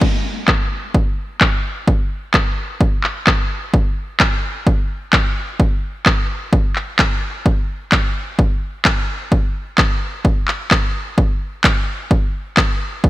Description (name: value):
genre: house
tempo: 129 BPM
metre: 4/4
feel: swing 57% on 16ths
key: none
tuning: none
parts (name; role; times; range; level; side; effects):
- electronic kick drum; drums; 0.0-13.1 s; none; -16 LUFS; equal; none
- house drum kit; drums; 0.0-12.7 s; crash cymbal, handclaps; -18 LUFS; equal; low-pass filter on hats, low-pass filter on snare, low-pass filter on cymbals
room: light reverb, digital ambience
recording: none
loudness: -15 LUFS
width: side -16 dB against mid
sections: 0.0-13.1 A section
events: none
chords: none